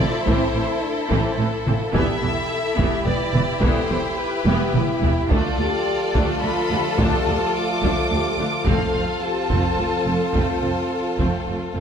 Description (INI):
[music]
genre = cinematic, epic orchestral film score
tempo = 107 BPM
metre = 3/4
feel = straight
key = unclear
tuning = A4 = 443 Hz
[part]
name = rich symphonic violin section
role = melody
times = 0.0-11.4 s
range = A4 to D6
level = -29 LUFS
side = left 1 dB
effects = none
[part]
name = rich studio violin section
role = second line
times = 0.0-11.8 s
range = E4 to A4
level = -27 LUFS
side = left 2 dB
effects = none
[part]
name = rich symphonic viola section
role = accompaniment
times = 0.0-11.8 s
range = E3 to D4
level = -29 LUFS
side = right 1 dB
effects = none
[part]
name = rich symphonic string section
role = sustained chords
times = 0.0-11.8 s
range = E4 to B5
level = -29 LUFS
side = left 1 dB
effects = none
[part]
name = warm French horn section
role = sustained chords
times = 0.0-11.7 s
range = C4 to B4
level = -28 LUFS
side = left 3 dB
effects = none
[part]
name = rich symphonic double bass section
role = bass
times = 0.0-11.8 s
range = E1 to D2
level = -26 LUFS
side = right 3 dB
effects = none
[part]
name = warm symphonic cello section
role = bass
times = 0.0-11.8 s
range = D2 to A2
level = -29 LUFS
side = right 2 dB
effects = none
[part]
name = taiko ensemble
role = drums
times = 0.0-11.7 s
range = none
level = -25 LUFS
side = equal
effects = none
[part]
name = clear trombone section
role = sustained chords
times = 0.3-11.7 s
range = E3 to C4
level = -30 LUFS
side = right 2 dB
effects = none
[sound]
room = moderate recital hall reverb, RT60 1.6 s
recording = none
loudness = -18 LUFS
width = side -7 dB against mid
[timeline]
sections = 0.0-11.8 A section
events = drum fill 4.5-5.3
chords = 0.0 Am; 1.9 Em; 5.3 Dm; 8.7 F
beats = | 0.27 0.83 1.39 | 1.95 2.51 3.07 | 3.63 4.19 4.75 | 5.31 5.87 6.43 | 6.99 7.55 8.11 | 8.67 9.23 9.79 | 10.35 10.91 11.47